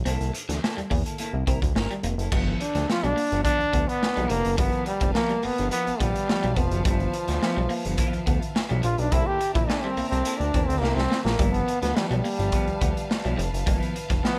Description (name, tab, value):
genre	funk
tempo	106 BPM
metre	4/4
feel	straight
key	G mixolydian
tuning	A4 = 440 Hz
part	fat analog bass	bass	0.0-14.2 s	F1 to E2	-29 LUFS	equal	none
part	clean electric guitar	accompaniment	0.1-14.4 s	F3 to Bb4	-36 LUFS	equal	none
part	clean electric guitar	riff	0.1-14.3 s	E3 to C4	-38 LUFS	equal	none
part	raw garage drum kit	drums	0.1-14.4 s	crash cymbal, hi-hat, kick drum, snare drum	-30 LUFS	equal	none
part	clear studio string section	sustained chords	2.3-14.4 s	Bb4 to A5	-40 LUFS	equal	none
part	bright trombone	melody	2.6-14.4 s	F3 to G4	-29 LUFS	equal	tape echo
room	light reverb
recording	none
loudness	-25 LUFS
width	mono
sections	0.0-2.3 A section; 2.3-14.4 B section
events	trombone solo 2.3-14.4; drum fill 10.8-11.4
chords	0.1 C13; 2.3 G13; 9.1 C13; 11.4 G13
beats	| 0.05 0.62 1.19 1.75 | 2.32 2.89 3.45 4.02 | 4.59 5.15 5.72 6.29 | 6.86 7.42 7.99 8.56 | 9.12 9.69 10.26 10.83 | 11.39 11.96 12.53 13.10 | 13.67 14.23